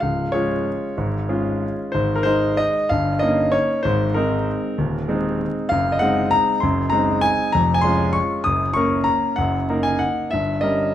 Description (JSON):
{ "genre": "classical, piano waltz", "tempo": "171-210 BPM", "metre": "3/4", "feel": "rubato", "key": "Db major", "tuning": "A4 = 438 Hz", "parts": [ { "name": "bright concert grand piano", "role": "solo", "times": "0.0-10.9 s", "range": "Db1 to Eb6", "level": "-18 LUFS", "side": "equal", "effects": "none" } ], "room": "moderate recital hall reverb, RT60 1.7 s", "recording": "close, detailed microphones, vinyl crackle", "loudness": "-18 LUFS", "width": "side -11 dB against mid", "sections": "0.0-10.9 A section", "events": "none", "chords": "0.0 Db; 2.0 Ab; 2.9 Eb7/G; 3.8 Ab; 5.7 Ab7/Gb; 7.5 Db/F; 8.5 Gb; 9.4 Ebm/Gb; 10.3 Gdim7" }